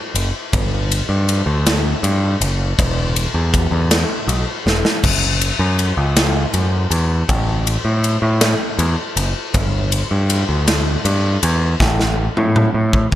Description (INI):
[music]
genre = indie rock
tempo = 53 BPM (dotted quarters)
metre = 6/8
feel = straight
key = A mixolydian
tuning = A4 = 440 Hz
[part]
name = overdriven picked electric bass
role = bass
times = 0.1-13.1 s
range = E1 to A2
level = -17 LUFS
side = equal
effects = none
[part]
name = big rock drum kit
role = drums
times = 0.2-13.2 s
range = crash cymbal, kick drum, ride cymbal, snare drum, toms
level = -18 LUFS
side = left 1 dB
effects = none
[sound]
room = little or no reverb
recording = lossy compression artefacts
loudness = -15 LUFS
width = side -12 dB against mid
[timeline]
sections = 0.0-13.2 A section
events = drum fill 4.7-5.0, 11.8-13.2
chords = none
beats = | 0.54 1.66 | 2.79 3.92 | 5.04 6.17 | 7.29 8.42 | 9.55 10.68 | 11.80 12.93